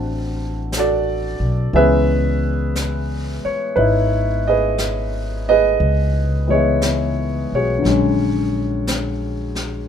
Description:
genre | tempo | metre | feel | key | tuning
jazz ballad | 59 BPM | 4/4 | swing 68% on 8ths | C# minor | A4 = 440 Hz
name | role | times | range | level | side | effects
warm grand piano | accompaniment | 0.0-9.9 s | D3 to A5 | -18 LUFS | equal | none
upright bass | bass | 0.0-9.9 s | G#1 to C#2 | -21 LUFS | equal | none
jazz brush drum kit | drums | 0.7-9.9 s | brushed snare drum, hi-hat, snare drum | -29 LUFS | left 1 dB | none
room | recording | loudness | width
light reverb | minimal, uncompressed stereo recording | -16 LUFS | side -8 dB against mid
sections
0.0-9.9 A section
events
none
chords
0.0 D9; 1.7 C#m9; 7.8 A#7alt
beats
0.71 | 1.72 2.74 3.76 4.78 | 5.79 6.81 7.84 8.87

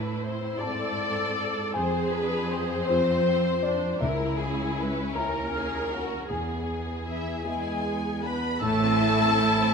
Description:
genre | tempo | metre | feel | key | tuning
cinematic, emotional film score for orchestra | 53 BPM (dotted quarters) | 6/8 | rubato | unclear | A4 = 439 Hz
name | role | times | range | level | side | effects
warm symphonic violin section | melody | 0.0-9.7 s | B3 to B5 | -32 LUFS | left 4 dB | none
warm symphonic violin section | second line | 0.0-9.7 s | A3 to D5 | -30 LUFS | left 4 dB | none
dark concert grand piano | accompaniment | 0.0-9.7 s | C#2 to Bb5 | -31 LUFS | left 1 dB | none
rich symphonic viola section | accompaniment | 0.0-9.7 s | C4 to B4 | -32 LUFS | right 2 dB | none
rich symphonic cello section | bass | 0.0-9.6 s | C#2 to A2 | -32 LUFS | right 4 dB | none
mellow French horn section | sustained chords | 7.1-9.7 s | E3 to B3 | -31 LUFS | left 1 dB | none
mellow hollow small flute group | second line | 8.6-9.7 s | E6 | -30 LUFS | right 2 dB | none
warm studio double bass section | bass | 8.6-9.6 s | A1 | -32 LUFS | right 5 dB | none
room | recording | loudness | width
moderate scoring stage reverb, RT60 1.6 s | none | -24 LUFS | side -5 dB against mid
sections
0.0-8.6 A section; 8.6-9.7 B section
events
none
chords
0.0 Am; 1.8 Fm; 4.0 C#m; 6.3 E; 8.6 Am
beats
0.62 | 1.76 2.88 | 4.01 5.16 | 6.30 7.46 | 8.63

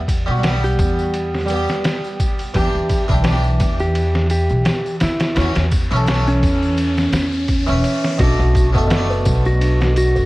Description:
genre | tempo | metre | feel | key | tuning
trip hop | 85 BPM | 4/4 | swing 55% on 16ths | E dorian | A4 = 440 Hz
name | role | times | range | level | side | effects
upright bass | bass | 0.0-10.3 s | E1 to E2 | -18 LUFS | equal | none
trip hop sampler-style drum kit | drums | 0.1-10.1 s | kick drum, ride cymbal, snare drum | -21 LUFS | equal | studio reverb
tambourine | percussion | 0.1-10.3 s | none | -38 LUFS | left 2 dB | none
harpsichord | accompaniment | 0.3-10.3 s | B2 to F#5 | -22 LUFS | equal | harmonic tremolo, vintage 12-bit sampler grit, tape echo
clean lap steel guitar | melody | 0.6-10.3 s | C#4 to G4 | -22 LUFS | equal | tape echo
riser | sound effects | 4.5-8.2 s | none | -35 LUFS | left 3 dB | none
music box | arpeggios | 8.2-10.3 s | D4 to B4 | -25 LUFS | right 1 dB | ping-pong delay
room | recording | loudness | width
light reverb, small room ambience | worn, warbling old tape, cassette tape, vinyl crackle, warbly pitch drift | -15 LUFS | side -19 dB against mid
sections
0.0-8.2 A section; 8.2-10.3 B section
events
riser 4.5-8.2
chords
0.0 Gmaj7; 2.5 Em7; 5.4 F#m7; 8.2 Bm7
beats
0.43 1.14 1.84 | 2.55 3.25 3.96 4.66 | 5.37 6.08 6.78 7.49 | 8.19 8.90 9.61

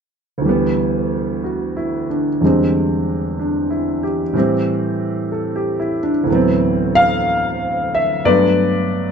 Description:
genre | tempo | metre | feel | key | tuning
solo jazz | 61 BPM | 4/4 | swing 69% on 8ths, rubato | G major | A4 = 440 Hz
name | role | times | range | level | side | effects
warm concert grand piano | solo | 0.4-9.1 s | D2 to F5 | -15 LUFS | equal | none
room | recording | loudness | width
moderate studio reverb, RT60 0.7 s | dark, warm production, nothing above 7.8 kHz | -15 LUFS | side -6 dB against mid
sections
0.4-8.3 A section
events
none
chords
0.4 G6/D; 2.4 E7alt; 4.3 Am7; 6.3 D13; 8.3 Gmaj9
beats
| 0.43 1.43 2.42 3.39 | 4.35 5.31 6.28 7.26 | 8.25

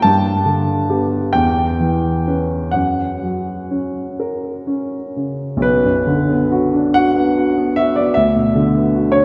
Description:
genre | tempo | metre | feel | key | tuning
classical, romantic nocturne for solo piano | 40-52 BPM (dotted quarters) | 12/8 | rubato | B minor | A4 = 439 Hz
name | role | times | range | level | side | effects
dark baby grand piano | solo | 0.0-9.2 s | B1 to A5 | -17 LUFS | equal | none
room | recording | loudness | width
wet church reverb, RT60 2.6 s | none | -17 LUFS | mono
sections
0.0-5.6 A section; 5.6-9.2 B section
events
none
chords
0.1 G; 1.4 C#m7b5/E; 2.8 F#; 5.6 Bm; 8.2 Bm/D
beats
| 0.05 1.36 2.76 4.20 | 5.63 6.96 8.16

